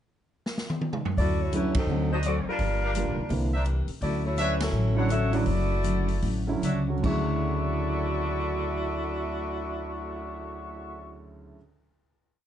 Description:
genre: jazz, big band swing.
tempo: 143-169 BPM.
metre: 4/4.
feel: swing 63% on 8ths.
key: D major.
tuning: A4 = 440 Hz.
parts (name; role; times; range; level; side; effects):
swinging big-band drum kit; drums; 0.5-10.3 s; crash cymbal, cymbal swell, hi-hat, kick drum, ride cymbal, snare drum, toms; -31 LUFS; equal; none.
dark saxophone section; melody; 1.2-11.2 s; F#3 to E5; -31 LUFS; equal; none.
picked steel-string acoustic guitar; accompaniment; 1.2-11.7 s; G2 to E4; -34 LUFS; left 4 dB; none.
upright bass; bass; 1.2-11.5 s; F#1 to D2; -29 LUFS; equal; none.
warm baby grand piano; accompaniment; 1.5-11.6 s; D2 to F#4; -33 LUFS; right 4 dB; none.
mellow trumpet section; stabs; 2.1-11.2 s; D4 to C#6; -34 LUFS; left 1 dB; none.
room: light reverb.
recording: dark, warm production, nothing above 10.7 kHz.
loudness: -25 LUFS.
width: side -10 dB against mid.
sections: 0.0-1.2 pickup bar; 1.2-7.0 A section; 7.0-10.4 final chord.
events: drum fill 0.5-1.2; band accent 1.7, 4.5; slowing down 4.0-7.0.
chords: 0.0 N.C.; 1.2 Dmaj9; 1.9 D7b9; 2.6 Gm7; 3.3 C9; 4.0 Dmaj9.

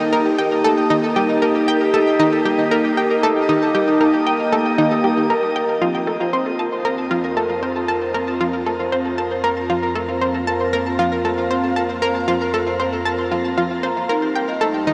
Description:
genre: ambient, sequencer-driven space music.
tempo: 116 BPM.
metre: 4/4.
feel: straight.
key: unclear.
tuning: A4 = 441 Hz.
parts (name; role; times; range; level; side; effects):
evolving wavetable pad; sustained chords; 0.0-14.9 s; G3 to G4; -25 LUFS; equal; phaser, built-in reverb.
vibraphone with soft mallets; arpeggios; 0.0-14.9 s; C4 to Bb5; -25 LUFS; equal; tape echo.
analog pluck; riff; 0.0-14.9 s; Eb4 to A5; -22 LUFS; equal; chorus, tape echo.
wind-like tuned noise texture; texture; 0.0-5.8 s; Eb4 to Eb5; -35 LUFS; equal; none.
round analog bass; bass; 5.8-14.9 s; Eb2 to F2; -38 LUFS; equal; none.
room: wet shimmer reverb, RT60 8.7 s.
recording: worn, warbling old tape, cassette tape, warbly pitch drift.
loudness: -19 LUFS.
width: mono.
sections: 0.0-5.8 A section; 5.8-14.9 B section.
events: fade-in on ambient pad 5.8-14.9; fade-in on analog synth bass 5.8-14.9.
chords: 0.0 Eb; 5.8 Fsus4; 14.1 Eb.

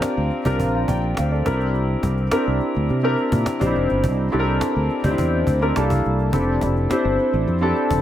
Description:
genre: polished 1980s jazz-funk pop.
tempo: 105 BPM.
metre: 4/4.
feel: straight.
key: unclear.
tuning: A4 = 436 Hz.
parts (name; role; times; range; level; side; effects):
warm grand piano; accompaniment; 0.0-8.0 s; Bb3 to Bb5; -20 LUFS; left 1 dB; analog chorus.
cajon; drums; 0.0-8.0 s; none; -26 LUFS; equal; none.
fingered electric bass; bass; 0.2-8.0 s; F1 to C3; -22 LUFS; equal; none.
room: light reverb, small room reverb.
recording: none.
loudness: -18 LUFS.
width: side -11 dB against mid.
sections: 0.0-8.0 A section.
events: none.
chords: 0.0 Bb6; 1.5 C9; 5.8 C13; 6.3 Fmaj13.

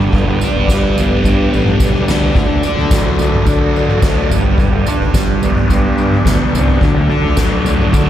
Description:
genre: psychedelic rock.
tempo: 108 BPM.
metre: 4/4.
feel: straight.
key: unclear.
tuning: A4 = 440 Hz.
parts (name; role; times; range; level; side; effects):
tonewheel organ; sustained chords; 0.0-8.1 s; F#3 to D5; -23 LUFS; right 2 dB; chorus vibrato, slow rotary speaker.
fuzz guitar; riff; 0.0-8.1 s; G2 to D4; -16 LUFS; left 1 dB; distortion, phaser, dub echo.
fuzz fingered electric bass; bass; 0.0-8.1 s; G1 to D3; -18 LUFS; equal; overdrive.
soft-mallet drum kit; drums; 0.1-8.1 s; kick drum, snare drum, toms; -15 LUFS; equal; none.
tambourine; percussion; 0.4-8.1 s; none; -32 LUFS; right 8 dB; dub echo.
room: light reverb, small room ambience.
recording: echo-heavy mix.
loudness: -11 LUFS.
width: side -11 dB against mid.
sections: 0.0-8.1 A section.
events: drum fill 2.1.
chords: 0.0 G; 2.4 D; 4.3 G; 6.8 D.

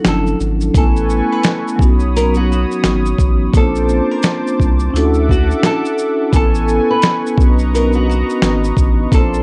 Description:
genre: lo-fi hip hop.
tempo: 86 BPM.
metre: 4/4.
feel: swing 58% on 16ths.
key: unclear.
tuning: A4 = 440 Hz.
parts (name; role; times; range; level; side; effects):
vibraphone with soft mallets; accompaniment; 0.0-9.4 s; F#3 to G#5; -20 LUFS; equal; cassette tape, low-pass filter.
dusty soul sampler-style drum kit; drums; 0.0-9.4 s; hi-hat, kick drum, shaker, snare drum; -17 LUFS; equal; none.
nylon-string guitar; melody; 0.1-9.4 s; F#4 to B4; -23 LUFS; equal; low-pass filter.
saturated sub bass; bass; 0.1-9.4 s; G1 to D2; -19 LUFS; equal; none.
warm analog pad; sustained chords; 0.7-9.4 s; Bb3 to D#6; -27 LUFS; equal; chorus, tremolo, low-pass filter.
room: digital ambience.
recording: dry, gritty hardware recording, cassette tape.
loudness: -15 LUFS.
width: mono.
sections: 0.0-9.4 A section.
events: break 0.0-0.7.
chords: 0.0 Dmaj9; 0.7 Amaj9; 1.8 Badd9; 3.5 Bbmaj9; 4.9 Dmaj9; 6.3 Amaj9; 7.4 Bmaj9.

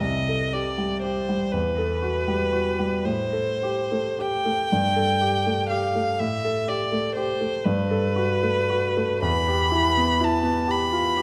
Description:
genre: classical, impressionist duo for violin and grand piano.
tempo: 39 BPM (dotted quarters).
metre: 6/8.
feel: uneven beats, rubato.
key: G major.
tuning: A4 = 441 Hz.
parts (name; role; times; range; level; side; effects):
clear violin; melody; 0.0-11.2 s; B4 to B5; -27 LUFS; equal; none.
clear grand piano; accompaniment; 0.0-11.2 s; C2 to A4; -26 LUFS; equal; none.
room: wet scoring stage reverb, RT60 1.9 s.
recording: none.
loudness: -24 LUFS.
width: mono.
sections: 0.0-11.2 A section.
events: none.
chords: 0.0 C5; 1.5 Emadd9; 3.1 Am7; 4.7 Gsus2; 6.2 Am7; 7.6 Gmaj9; 9.2 Em.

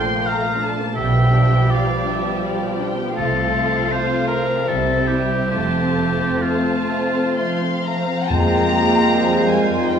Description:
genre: classical.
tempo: 61-87 BPM.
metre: 3/4.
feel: rubato.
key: F major.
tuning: A4 = 437 Hz.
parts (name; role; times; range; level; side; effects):
dark symphonic violin section; melody; 0.0-10.0 s; D5 to C6; -26 LUFS; left 5 dB; none.
clear oboe; second line; 0.0-10.0 s; F4 to G5; -24 LUFS; equal; none.
warm symphonic violin section; second line; 0.0-10.0 s; G3 to C5; -27 LUFS; left 2 dB; none.
warm symphonic viola section; accompaniment; 0.0-10.0 s; F3 to F4; -24 LUFS; right 2 dB; none.
concert harp; arpeggios; 0.0-10.0 s; Bb2 to A5; -26 LUFS; left 2 dB; none.
dark symphonic double bass section; bass; 1.0-10.0 s; F1 to F2; -24 LUFS; right 3 dB; none.
warm symphonic cello section; bass; 1.0-10.0 s; F2 to Bb3; -25 LUFS; right 3 dB; none.
small flute group; second line; 7.4-10.0 s; C5 to G5; -26 LUFS; right 1 dB; none.
clear clarinet; second line; 8.3-10.0 s; F4; -26 LUFS; equal; none.
mellow bassoon; accompaniment; 8.3-10.0 s; Ab3; -24 LUFS; right 2 dB; none.
dark French horn section; sustained chords; 8.3-10.0 s; Ab3 to C4; -23 LUFS; left 3 dB; none.
timpani; percussion; 8.3-9.4 s; F2; -24 LUFS; left 1 dB; none.
room: wet recital hall reverb, RT60 1.3 s.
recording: recorded in a church or concert hall, nothing above 11.0 kHz.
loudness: -16 LUFS.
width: side -7 dB against mid.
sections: 0.0-8.3 A section; 8.3-10.0 B section.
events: none.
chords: 0.0 Bbmaj7; 1.0 G7/B; 3.2 F/C; 4.7 C; 5.5 F; 8.3 Fm.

